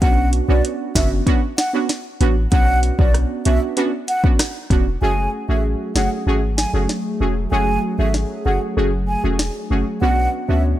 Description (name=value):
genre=dancehall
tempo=96 BPM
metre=4/4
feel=straight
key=F# minor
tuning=A4 = 440 Hz
part: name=mellow hollow concert flute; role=melody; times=0.0-10.6 s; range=D5 to G#5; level=-24 LUFS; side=right 1 dB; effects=digital delay
part: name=synth brass stab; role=accompaniment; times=0.0-10.8 s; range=A3 to G#4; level=-22 LUFS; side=right 2 dB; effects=chorus
part: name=warm 808-style bass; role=bass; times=0.0-10.7 s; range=E1 to D2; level=-19 LUFS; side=equal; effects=none
part: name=afro-pop drum kit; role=drums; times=0.0-9.5 s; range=hi-hat, kick drum, rim click, snare drum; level=-19 LUFS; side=equal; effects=none
part: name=hollow soft pad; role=sustained chords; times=5.0-10.8 s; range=B2 to C#5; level=-27 LUFS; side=equal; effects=chorus, sidechain pumping
room=little or no reverb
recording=none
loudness=-16 LUFS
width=side -13 dB against mid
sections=0.0-5.0 A section; 5.0-10.8 B section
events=none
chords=0.0 Bmadd9; 5.0 F#madd9; 10.0 Bmadd9